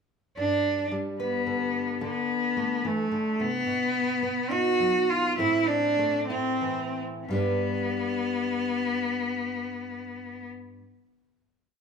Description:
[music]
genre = indie folk with a building arrangement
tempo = 58-72 BPM (dotted quarters)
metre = 6/8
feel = straight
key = G major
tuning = A4 = 441 Hz
[part]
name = clear cello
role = melody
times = 0.4-10.5 s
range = A3 to F#4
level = -26 LUFS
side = equal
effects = none
[part]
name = fingerpicked steel-string acoustic guitar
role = accompaniment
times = 0.4-10.8 s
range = G2 to B4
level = -33 LUFS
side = equal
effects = none
[sound]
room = moderate large studio reverb, RT60 1.1 s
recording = band playing live in one room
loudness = -25 LUFS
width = side -6 dB against mid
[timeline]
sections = 0.4-7.3 breakdown; 7.3-11.4 final chord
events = slowing down 3.7-7.3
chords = 0.4 G; 2.0 D5; 3.7 B; 5.4 Am; 7.3 G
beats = | 0.36 1.19 | 2.02 2.84 | 3.67 4.51 | 5.38 6.29 | 7.28 8.32 | 9.36 10.40

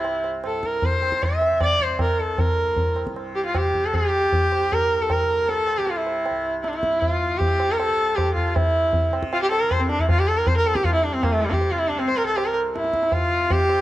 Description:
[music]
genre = indian classical, Hindustani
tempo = 156 BPM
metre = 4/4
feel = straight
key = C raga khamaj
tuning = A4 = 440 Hz
[part]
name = rich sarangi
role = melody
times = 0.0-13.8 s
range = G3 to E5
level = -21 LUFS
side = equal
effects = plate reverb
[part]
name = tanpura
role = drone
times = 0.0-13.8 s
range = C2 to C3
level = -34 LUFS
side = equal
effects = none
[part]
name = tabla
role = percussion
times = 0.0-13.8 s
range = none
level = -24 LUFS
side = equal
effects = none
[sound]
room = moderate studio ambience, RT60 0.5 s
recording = dark, warm production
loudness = -19 LUFS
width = side -15 dB against mid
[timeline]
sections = 0.0-8.6 A section; 8.6-13.8 B section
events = none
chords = none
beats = 0.05 0.44 | 0.83 1.22 1.61 2.00 | 2.39 2.77 3.16 3.55 | 3.94 4.32 4.71 5.09 | 5.48 5.87 6.25 6.63 | 7.02 7.40 7.79 8.17 | 8.55 8.94 9.32 9.70 | 10.09 10.47 10.85 11.23 | 11.61 11.99 12.37 12.75 | 13.13 13.51

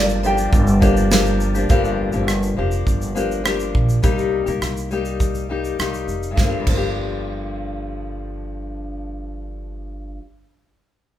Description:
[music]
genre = acoustic pop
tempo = 103 BPM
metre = 4/4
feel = straight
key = G minor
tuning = A4 = 439 Hz
[part]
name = dark upright piano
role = melody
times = 0.0-1.4 s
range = G5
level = -23 LUFS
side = right 1 dB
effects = none
[part]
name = flamenco guitar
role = accompaniment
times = 0.0-10.3 s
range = G2 to G4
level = -23 LUFS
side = left 4 dB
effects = none
[part]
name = tonewheel organ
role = sustained chords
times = 0.0-1.7 s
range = G3 to A5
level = -32 LUFS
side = equal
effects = overdrive, chorus vibrato, slow rotary speaker
[part]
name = open-back banjo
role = arpeggios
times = 0.0-1.5 s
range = Bb4 to D5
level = -33 LUFS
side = right 6 dB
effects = none
[part]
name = upright bass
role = bass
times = 0.0-10.2 s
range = F1 to C2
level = -22 LUFS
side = right 1 dB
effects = none
[part]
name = modern studio drum kit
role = drums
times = 0.1-6.8 s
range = crash cymbal, kick drum, rim click, shaker, snare drum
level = -20 LUFS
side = right 1 dB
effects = none
[sound]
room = moderate large studio reverb, RT60 1.2 s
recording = band playing live in one room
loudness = -17 LUFS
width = side -12 dB against mid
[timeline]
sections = 0.0-1.7 A section; 1.7-6.4 B section; 6.4-8.7 C section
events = none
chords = 0.0 Gm7; 4.0 Cm7; 6.4 Gm7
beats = 0.53 1.12 | 1.70 2.28 2.87 3.45 | 4.03 4.62 5.20 5.79 | 6.37 6.95 7.54 8.12

